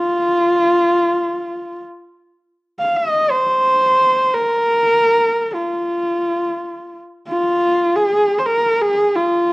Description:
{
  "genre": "mongolian traditional",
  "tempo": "free time",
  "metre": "none",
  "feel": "none",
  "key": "F yu mode",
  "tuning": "A4 = 437 Hz",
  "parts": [
    { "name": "rich horsehead fiddle", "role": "solo", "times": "0.0-9.5 s", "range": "F4 to F5", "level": "-15 LUFS", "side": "equal", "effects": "cassette tape" }
  ],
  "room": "moderate spring reverb, RT60 1.3 s, small room ambience",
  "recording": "home recording on cassette",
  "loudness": "-14 LUFS",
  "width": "side -22 dB against mid",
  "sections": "0.0-7.3 A section; 7.3-9.5 B section",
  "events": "none",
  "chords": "none",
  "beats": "free time"
}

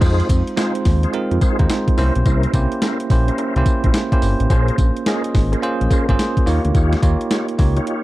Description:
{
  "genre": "R&B, new jack swing",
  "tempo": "107 BPM",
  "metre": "4/4",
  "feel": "swing 64% on 16ths",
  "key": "F minor",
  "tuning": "A4 = 440 Hz",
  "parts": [
    { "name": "bell-like tine electric piano", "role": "accompaniment", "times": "0.0-8.0 s", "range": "Ab3 to Eb5", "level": "-21 LUFS", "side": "right 3 dB", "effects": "fast stereo tremolo" },
    { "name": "tonewheel organ", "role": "stabs", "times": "0.0-8.0 s", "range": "Db4 to Db5", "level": "-27 LUFS", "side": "left 2 dB", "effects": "chorus vibrato, fast rotary speaker" },
    { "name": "fat analog bass", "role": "bass", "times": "0.0-7.8 s", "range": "G1 to F2", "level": "-17 LUFS", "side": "equal", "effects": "none" },
    { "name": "clean 12-bit digital drum machine", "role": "drums", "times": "0.0-8.0 s", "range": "crash cymbal, hi-hat, kick drum, snare drum, tambourine", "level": "-18 LUFS", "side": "equal", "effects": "overdrive" }
  ],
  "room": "digital ambience",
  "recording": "dark, warm production",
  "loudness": "-15 LUFS",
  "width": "side -17 dB against mid",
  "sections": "0.0-8.0 A section",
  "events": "none",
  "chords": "0.0 Fm7; 2.0 C7b9; 4.5 Bbm9; 6.5 Eb9",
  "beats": "| 0.01 0.58 1.14 1.70 | 2.26 2.82 3.38 3.94 | 4.50 5.06 5.62 6.18 | 6.74 7.30 7.87"
}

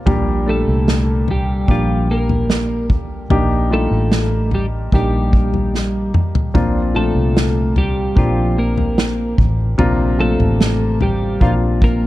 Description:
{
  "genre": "pop ballad",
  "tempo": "74 BPM",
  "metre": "4/4",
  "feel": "straight",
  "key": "Bb major",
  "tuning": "A4 = 440 Hz",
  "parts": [
    { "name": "warm concert grand piano", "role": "accompaniment", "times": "0.0-12.1 s", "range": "Bb2 to A4", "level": "-21 LUFS", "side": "left 2 dB", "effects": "none" },
    { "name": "vintage muted fingered electric bass", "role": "bass", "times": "0.1-12.1 s", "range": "A1 to C2", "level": "-19 LUFS", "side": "equal", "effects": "none" },
    { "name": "unplugged drum kit", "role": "drums", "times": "0.1-12.0 s", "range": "kick drum, snare drum, toms", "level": "-18 LUFS", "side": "equal", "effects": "none" },
    { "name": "twelve-string electric guitar", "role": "melody", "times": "0.5-12.1 s", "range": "F3 to Bb4", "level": "-21 LUFS", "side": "equal", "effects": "none" }
  ],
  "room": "small room reverb",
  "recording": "dark, warm production",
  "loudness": "-14 LUFS",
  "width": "side -16 dB against mid",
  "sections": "0.0-12.1 A section",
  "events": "drum fill 5.7-6.6",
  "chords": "0.1 Gm/Bb; 3.3 Ebmaj7; 6.6 Bbadd9",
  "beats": "| 0.06 0.88 1.69 2.50 | 3.31 4.12 4.93 5.74 | 6.55 7.36 8.17 8.98 | 9.79 10.61 11.42"
}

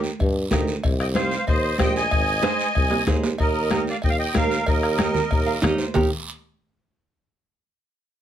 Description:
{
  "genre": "latin, cumbia",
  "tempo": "188 BPM",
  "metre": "4/4",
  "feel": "straight",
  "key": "Eb major",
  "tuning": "A4 = 437 Hz",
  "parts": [
    { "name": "nylon-string guitar", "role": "accompaniment", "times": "0.0-6.1 s", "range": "Eb4 to F5", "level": "-25 LUFS", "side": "right 3 dB", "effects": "none" },
    { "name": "clear tuba", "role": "bass", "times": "0.0-6.1 s", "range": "Ab1 to G2", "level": "-26 LUFS", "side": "equal", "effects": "none" },
    { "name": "guiro", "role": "percussion", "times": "0.0-6.0 s", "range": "none", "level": "-36 LUFS", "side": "right 5 dB", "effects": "none" },
    { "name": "bombo", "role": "percussion", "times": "0.2-6.0 s", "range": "none", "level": "-24 LUFS", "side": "left 2 dB", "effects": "none" },
    { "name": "congas", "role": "percussion", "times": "0.2-6.0 s", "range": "none", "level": "-28 LUFS", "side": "equal", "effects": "none" },
    { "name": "cowbell and timbales", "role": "percussion", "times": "0.2-6.0 s", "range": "none", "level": "-31 LUFS", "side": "right 3 dB", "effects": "none" },
    { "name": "musette accordion", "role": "melody", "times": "1.0-5.6 s", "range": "Bb4 to Ab5", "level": "-24 LUFS", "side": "right 2 dB", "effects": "none" }
  ],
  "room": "light reverb",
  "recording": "close, detailed microphones",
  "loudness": "-19 LUFS",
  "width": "side -10 dB against mid",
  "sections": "0.0-3.4 A section; 3.4-5.9 B section; 5.9-7.2 C section",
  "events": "drum fill 2.4-3.4; nylon-string guitar fill 5.3-5.9",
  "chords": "0.0 Eb; 0.8 Cm; 2.1 Ab; 3.4 Eb",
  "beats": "0.20 0.52 | 0.84 1.16 1.48 1.79 | 2.11 2.43 2.75 3.07 | 3.39 3.71 4.03 4.35 | 4.67 4.98 5.30 5.62 | 5.94"
}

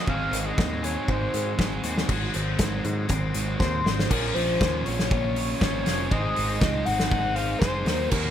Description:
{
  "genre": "indie rock",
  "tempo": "119 BPM",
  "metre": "4/4",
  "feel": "straight",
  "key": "unclear",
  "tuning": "A4 = 438 Hz",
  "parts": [
    { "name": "overdriven synth lead", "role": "melody", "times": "0.0-8.3 s", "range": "Bb4 to Gb5", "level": "-29 LUFS", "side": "left 2 dB", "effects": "distortion, chorus, phaser, slapback echo" },
    { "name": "combo organ", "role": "sustained chords", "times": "0.0-4.1 s", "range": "Ab3 to C6", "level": "-39 LUFS", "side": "right 1 dB", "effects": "none" },
    { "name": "cranked stack guitar", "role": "riff", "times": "0.0-8.3 s", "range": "Eb3 to Gb4", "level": "-32 LUFS", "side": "left 6 dB", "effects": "overdrive" },
    { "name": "sludgy distorted guitar", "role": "riff", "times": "0.0-8.3 s", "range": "Ab2 to Db5", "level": "-31 LUFS", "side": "right 6 dB", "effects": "overdrive, lush chorus" },
    { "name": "modern bright picked electric bass", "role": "bass", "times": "0.1-8.3 s", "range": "F1 to Ab2", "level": "-30 LUFS", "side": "equal", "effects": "none" },
    { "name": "loose indie drum kit", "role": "drums", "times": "0.1-8.2 s", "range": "crash cymbal, hi-hat, kick drum, snare drum", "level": "-26 LUFS", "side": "equal", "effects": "none" }
  ],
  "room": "light reverb",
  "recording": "none",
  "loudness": "-22 LUFS",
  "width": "side -10 dB against mid",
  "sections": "0.0-2.1 A section; 2.1-4.1 B section; 4.1-8.3 C section",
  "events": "drum fill 3.6-4.1",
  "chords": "0.1 Ab7; 4.1 Bbm; 6.1 Ab",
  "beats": "| 0.07 0.58 1.08 1.59 | 2.09 2.60 3.10 3.60 | 4.11 4.61 5.11 5.61 | 6.12 6.62 7.12 7.62 | 8.12"
}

